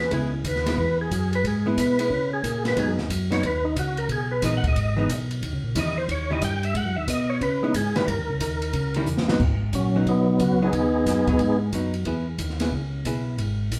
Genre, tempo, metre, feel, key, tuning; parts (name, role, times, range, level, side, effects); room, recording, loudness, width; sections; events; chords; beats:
soul jazz organ trio; 181 BPM; 4/4; swing 64% on 8ths; G# minor; A4 = 440 Hz
overdriven tonewheel organ; melody; 0.0-11.6 s; F#3 to G5; -27 LUFS; equal; slow rotary speaker, chorus vibrato
tonewheel organ; bass; 0.0-13.8 s; G#1 to C#3; -29 LUFS; equal; slow rotary speaker
archtop guitar, miked and amplified; accompaniment; 0.1-13.4 s; D#3 to G#4; -31 LUFS; equal
open jazz drum kit; drums; 0.1-13.8 s; crash cymbal, hi-hat, kick drum, ride cymbal, snare drum; -33 LUFS; equal
wet club reverb, RT60 0.8 s; heard from further back in the room; -24 LUFS; mono
0.0-9.4 A section; 9.4-13.8 B section
tonewheel organ solo 0.0-9.4; drum fill 9.1-9.4
0.0 C#m7; 2.8 G#m7; 4.1 Emaj7; 5.4 D#7b9; 6.8 G#m7; 7.4 C#m7; 8.1 D#7b9; 9.4 G#m7; 12.1 C#m7
| 0.12 0.45 0.78 1.11 | 1.45 1.78 2.11 2.44 | 2.77 3.10 3.44 3.77 | 4.10 4.43 4.76 5.09 | 5.43 5.76 6.09 6.42 | 6.75 7.09 7.42 7.75 | 8.08 8.41 8.74 9.08 | 9.41 9.74 10.07 10.40 | 10.73 11.07 11.40 11.73 | 12.06 12.39 12.72 13.06 | 13.39 13.72